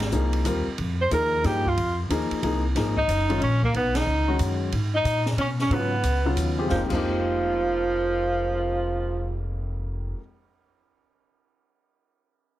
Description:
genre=modal jazz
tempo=183 BPM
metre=3/4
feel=swing 64% on 8ths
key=unclear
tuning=A4 = 440 Hz
part: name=warm grand piano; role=accompaniment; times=0.0-10.2 s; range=F2 to C5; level=-28 LUFS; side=left 3 dB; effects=none
part: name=upright bass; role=bass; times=0.0-10.1 s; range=F1 to Cb3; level=-26 LUFS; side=equal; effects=none
part: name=open jazz drum kit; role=drums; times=0.0-7.0 s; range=crash cymbal, hi-hat, kick drum, ride cymbal, snare drum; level=-34 LUFS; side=right 1 dB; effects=none
part: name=clear tenor saxophone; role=melody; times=1.0-9.4 s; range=F3 to C5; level=-26 LUFS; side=right 2 dB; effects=plate reverb
part: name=growling alto saxophone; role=second line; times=1.0-9.4 s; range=Bb3 to C5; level=-28 LUFS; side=equal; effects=none
room=light reverb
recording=heavily compressed radio sound, multiband compression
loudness=-22 LUFS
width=side -14 dB against mid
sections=0.0-6.7 A section; 6.7-8.7 B section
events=band accent 3.9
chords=0.0 Fm11; 2.7 Abm11; 6.7 Fm11

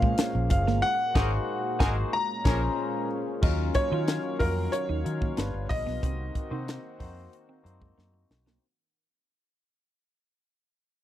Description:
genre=polished 1980s jazz-funk pop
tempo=92 BPM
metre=4/4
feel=straight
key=unclear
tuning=A4 = 440 Hz
part: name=warm concert grand piano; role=melody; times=0.0-8.3 s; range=Bb4 to Bb5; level=-30 LUFS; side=left 1 dB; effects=slapback echo
part: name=clear horn section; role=second line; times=0.0-2.6 s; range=F3 to C5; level=-37 LUFS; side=right 2 dB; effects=none
part: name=barky tine electric piano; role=accompaniment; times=0.0-8.6 s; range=Gb3 to C5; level=-34 LUFS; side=left 4 dB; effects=overdrive, lush chorus
part: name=lush unison pad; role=sustained chords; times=0.0-8.6 s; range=Bb2 to F5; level=-38 LUFS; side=right 1 dB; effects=chorus
part: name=clean electric guitar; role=riff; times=0.0-8.6 s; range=Ab3 to F4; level=-35 LUFS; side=right 8 dB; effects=analog chorus
part: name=vintage muted fingered electric bass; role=bass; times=0.0-8.6 s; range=Gb1 to Eb3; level=-30 LUFS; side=equal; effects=none
part: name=crisp fusion drum kit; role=drums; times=0.0-8.6 s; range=crash cymbal, hi-hat, kick drum, snare drum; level=-27 LUFS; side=equal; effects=none
room=little or no reverb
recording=dry, close 1970s-style studio recording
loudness=-25 LUFS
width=side -12 dB against mid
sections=0.0-3.4 A section; 3.4-8.6 B section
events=band accent 0.8-3.4; fade-out 3.4-8.6; drum fill 8.0-8.6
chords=0.0 Bbm9; 0.8 Ab9; 2.1 Bbm9; 3.4 Ebm9; 5.4 G7; 6.0 Cm7b5

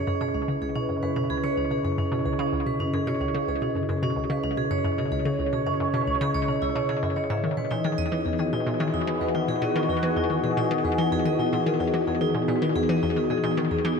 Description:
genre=ambient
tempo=110 BPM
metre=4/4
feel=straight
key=unclear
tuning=A4 = 443 Hz
part: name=sweeping resonant pad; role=sustained chords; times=0.0-14.0 s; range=Db3 to Eb5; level=-27 LUFS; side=left 1 dB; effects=chorus
part: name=vibraphone with hard mallets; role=arpeggios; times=0.0-14.0 s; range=Db4 to Fb5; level=-28 LUFS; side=right 2 dB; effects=auto-pan, ping-pong delay
part: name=hollow square pluck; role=riff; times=0.1-13.9 s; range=Db2 to E3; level=-28 LUFS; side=left 1 dB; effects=chorus, ping-pong delay
room=moderate plate reverb, RT60 2.6 s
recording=dreamy mix soaked in reverb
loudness=-23 LUFS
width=side -5 dB against mid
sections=0.0-14.0 A section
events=none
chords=0.0 Dbm7; 7.4 Emaj7

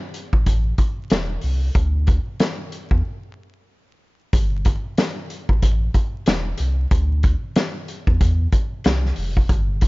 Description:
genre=hip hop, boom-bap hip-hop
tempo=93 BPM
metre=4/4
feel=swing 61% on 16ths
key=unclear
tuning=A4 = 441 Hz
part: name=vintage drum kit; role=drums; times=0.1-9.9 s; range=hi-hat, kick drum, snare drum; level=-20 LUFS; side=equal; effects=none
part: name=warm sub bass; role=bass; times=0.3-9.9 s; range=E1 to E2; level=-21 LUFS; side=equal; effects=none
room=little or no reverb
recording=vinyl crackle, nothing above 7.5 kHz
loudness=-18 LUFS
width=side -23 dB against mid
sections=0.0-4.3 A section; 4.3-9.9 A section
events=break 3.0-4.3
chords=none

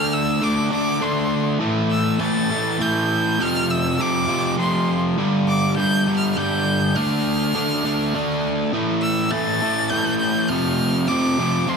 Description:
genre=rock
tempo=101 BPM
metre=3/4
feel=straight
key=A minor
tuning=A4 = 440 Hz
part: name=rich violin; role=melody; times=0.0-11.8 s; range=C6 to A6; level=-24 LUFS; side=right 1 dB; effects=digital delay
part: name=crunchy overdriven guitar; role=riff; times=0.0-11.8 s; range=F2 to D4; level=-19 LUFS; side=equal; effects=none
room=moderate large studio reverb, RT60 0.9 s, small room reverb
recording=none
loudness=-18 LUFS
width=side -5 dB against mid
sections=0.0-11.8 A section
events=none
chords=0.0 D5; 1.6 A5; 3.4 F5; 5.2 G5; 7.0 Dm; 8.7 A5; 10.5 F5

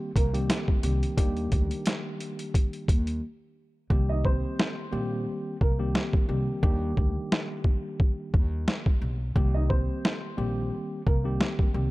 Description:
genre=hip hop, boom-bap hip-hop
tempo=88 BPM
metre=4/4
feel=swing 56% on 16ths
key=C minor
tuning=A4 = 439 Hz
part: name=mellow tine electric piano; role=accompaniment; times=0.0-11.9 s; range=Eb3 to G4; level=-33 LUFS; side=left 1 dB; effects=medium stereo tremolo, cassette tape, high-pass filter, low-pass filter
part: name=dark upright piano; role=melody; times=0.2-11.2 s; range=Bb3 to Eb5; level=-36 LUFS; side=right 3 dB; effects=high-pass filter, low-pass filter, analog delay
part: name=upright bass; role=bass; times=0.2-11.9 s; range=Bb1 to Eb2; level=-28 LUFS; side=equal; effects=none
part: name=boom bap sampler-style drum kit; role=drums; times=0.2-11.7 s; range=hi-hat, kick drum, snare drum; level=-24 LUFS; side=equal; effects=overdrive
room=studio reverb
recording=dark, warm production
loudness=-24 LUFS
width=side -20 dB against mid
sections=0.0-3.9 A section; 3.9-11.9 A section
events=break 3.2-3.9; hi-hats muted 3.9-11.9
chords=0.0 Cm7; 1.2 Ebmaj7; 3.9 Cm7; 6.6 Ebmaj7; 9.4 Cm7

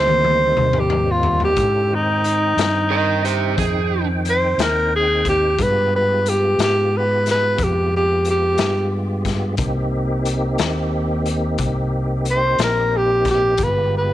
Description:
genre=slow blues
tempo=60 BPM (dotted quarters)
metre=12/8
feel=straight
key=C minor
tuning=A4 = 440 Hz
part: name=breathy tenor saxophone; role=melody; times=0.0-14.1 s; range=Eb4 to C5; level=-18 LUFS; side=equal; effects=none
part: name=tonewheel organ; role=sustained chords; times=0.0-14.1 s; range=Eb3 to G5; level=-26 LUFS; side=equal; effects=slow rotary speaker, chorus vibrato
part: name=fingered electric bass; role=bass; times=0.0-14.1 s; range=G1 to Ab2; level=-22 LUFS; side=equal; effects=none
part: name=raw garage drum kit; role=drums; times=0.1-13.7 s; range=hi-hat, kick drum, snare drum, toms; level=-24 LUFS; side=left 4 dB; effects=none
part: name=overdriven slide guitar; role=second line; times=2.9-4.1 s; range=G4 to Eb5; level=-22 LUFS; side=right 11 dB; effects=none
room=light reverb, studio ambience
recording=1960s-style stereo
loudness=-16 LUFS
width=side -13 dB against mid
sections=0.0-14.1 A section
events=drum fill 0.0-1.6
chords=0.0 Cm7; 1.6 Abmaj7; 5.6 G7b9; 9.6 Cm7; 13.6 G7b9

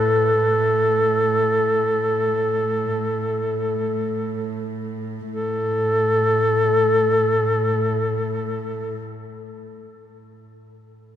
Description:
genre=caucasian folk, Caucasian lament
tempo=free time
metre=none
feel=none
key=unclear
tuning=A4 = 440 Hz
part: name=warm duduk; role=melody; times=0.0-9.0 s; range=A4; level=-20 LUFS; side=left 1 dB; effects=none
part: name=warm chamber cello section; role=drone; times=0.0-9.0 s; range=A2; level=-26 LUFS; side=right 2 dB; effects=none
room=wet cathedral reverb, RT60 5.8 s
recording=none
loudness=-18 LUFS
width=side -10 dB against mid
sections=0.0-5.3 A section; 5.3-9.8 B section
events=slowing down 0.0-5.3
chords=none

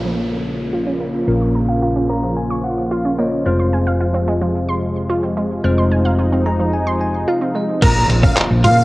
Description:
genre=dance-pop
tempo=110 BPM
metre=4/4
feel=straight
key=Bb minor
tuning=A4 = 440 Hz
part: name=bell-like tine electric piano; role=accompaniment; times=0.0-7.8 s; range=Ab3 to Bb5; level=-22 LUFS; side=left 2 dB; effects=fast stereo tremolo, sidechain pumping, low-pass filter
part: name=warm analog pad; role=sustained chords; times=0.0-8.8 s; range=C3 to F4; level=-22 LUFS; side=equal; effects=chorus, sidechain pumping, low-pass filter
part: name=wide unison pluck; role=arpeggios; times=0.0-7.7 s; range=F3 to F6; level=-23 LUFS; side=right 2 dB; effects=sidechain pumping, low-pass filter, tape echo
part: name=hollow-body short-scale fingered electric bass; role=bass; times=0.0-8.8 s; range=F1 to Bb2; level=-19 LUFS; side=equal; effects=sidechain pumping
part: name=downlifter and impact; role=sound effects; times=0.0-3.5, 7.8-8.8 s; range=none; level=-28 LUFS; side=equal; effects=none
part: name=supersaw chords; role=melody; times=7.8-8.8 s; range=F5 to Bb5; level=-17 LUFS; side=equal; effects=sidechain pumping
part: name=twelve-string electric guitar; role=riff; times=7.8-8.7 s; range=Bb3 to F4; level=-21 LUFS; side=right 1 dB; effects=analog chorus
part: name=detuned 8-bit digital drum machine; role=drums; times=7.8-8.8 s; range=crash cymbal, handclaps, hi-hat, kick drum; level=-16 LUFS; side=equal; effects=cassette tape
room=light reverb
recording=home recording on cassette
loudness=-15 LUFS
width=side -19 dB against mid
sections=0.0-7.8 A section; 7.8-8.8 B section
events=filter sweep 0.0-7.8; tine electric piano fill 1.8-3.5, 6.2-7.8; drop 7.8-8.8; impact 7.8-8.8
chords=0.0 Bbm; 3.5 Fm; 7.8 Bbm

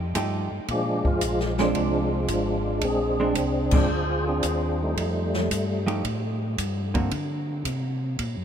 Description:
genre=soul jazz organ trio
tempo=112 BPM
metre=4/4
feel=swing 68% on 8ths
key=unclear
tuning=A4 = 440 Hz
part: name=mellow tonewheel organ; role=bass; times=0.0-8.4 s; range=Ab1 to D3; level=-28 LUFS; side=equal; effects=chorus vibrato, slow rotary speaker
part: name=vintage hollow-body jazz guitar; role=accompaniment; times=0.1-7.1 s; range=D3 to G4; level=-31 LUFS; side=right 2 dB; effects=none
part: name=open jazz drum kit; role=drums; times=0.1-8.4 s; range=crash cymbal, hi-hat, kick drum, ride cymbal, snare drum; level=-30 LUFS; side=equal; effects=none
part: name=percussive tonewheel organ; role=melody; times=0.7-5.8 s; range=F3 to C5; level=-27 LUFS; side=equal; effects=slow rotary speaker, overdrive, chorus vibrato
room=moderate huge ambient reverb, RT60 7.6 s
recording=in a vast, echoing space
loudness=-23 LUFS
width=side -8 dB against mid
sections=0.0-8.4 A section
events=band accent 3.6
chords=0.0 F9; 0.7 Bb9; 5.0 F9; 7.1 D7(#5, no3)

